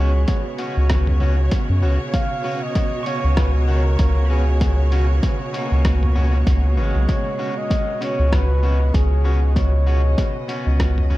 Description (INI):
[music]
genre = ambient dub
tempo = 97 BPM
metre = 4/4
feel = swing 58% on 16ths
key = unclear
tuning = A4 = 440 Hz
[part]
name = trumpet with bucket mute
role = melody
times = 0.0-10.8 s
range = Ab4 to F5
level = -29 LUFS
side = left 1 dB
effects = dub echo
[part]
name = rich studio string section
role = sustained chords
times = 0.0-11.2 s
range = Cb3 to Eb5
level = -28 LUFS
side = right 2 dB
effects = none
[part]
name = pedal steel guitar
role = arpeggios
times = 0.0-8.1 s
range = Ab3 to Db6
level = -34 LUFS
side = right 3 dB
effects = dub echo
[part]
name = electric guitar at the edge of break-up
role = stabs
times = 0.0-11.2 s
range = Cb4 to Gb4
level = -30 LUFS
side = left 2 dB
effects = dub echo
[part]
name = soft dub sub bass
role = bass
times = 0.0-11.2 s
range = Ab1 to Gb2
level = -16 LUFS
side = equal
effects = none
[part]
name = electronic kick drum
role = drums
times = 0.3-10.9 s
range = none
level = -21 LUFS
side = equal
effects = overdrive
[part]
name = lo-fi sampler-style drum kit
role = drums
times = 0.3-11.2 s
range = hi-hat, rim click, toms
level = -29 LUFS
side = equal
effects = dub echo
[sound]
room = little or no reverb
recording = dark, warm production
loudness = -17 LUFS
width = side -17 dB against mid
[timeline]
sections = 0.0-11.2 A section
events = none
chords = 0.0 Db7sus4